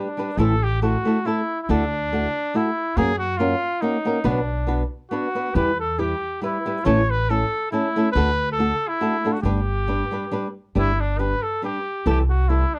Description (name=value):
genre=mexican folk, mariachi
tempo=139 BPM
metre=3/4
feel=swing 54% on 8ths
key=G major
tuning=A4 = 441 Hz
part: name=warm trumpet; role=melody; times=0.0-12.8 s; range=D4 to C#5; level=-27 LUFS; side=equal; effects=none
part: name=flamenco guitar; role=accompaniment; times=0.0-12.6 s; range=A2 to B4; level=-26 LUFS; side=equal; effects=none
part: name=upright bass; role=bass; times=0.4-12.6 s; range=G1 to F#2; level=-25 LUFS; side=equal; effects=none
room=light reverb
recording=dark, warm production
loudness=-22 LUFS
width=mono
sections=0.4-10.8 A section; 10.8-12.8 B section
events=break 0.0-0.4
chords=0.4 Am; 1.7 Dadd9; 3.0 F#; 4.3 Bm; 5.6 Em; 6.9 A; 8.1 D; 9.4 G; 12.1 C6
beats=| 0.37 0.81 1.25 | 1.68 2.11 2.54 | 2.97 3.40 3.83 | 4.25 4.68 5.12 | 5.56 6.00 6.43 | 6.86 7.29 7.72 | 8.15 8.58 9.00 | 9.44 9.87 10.32 | 10.76 11.20 11.64 | 12.07 12.50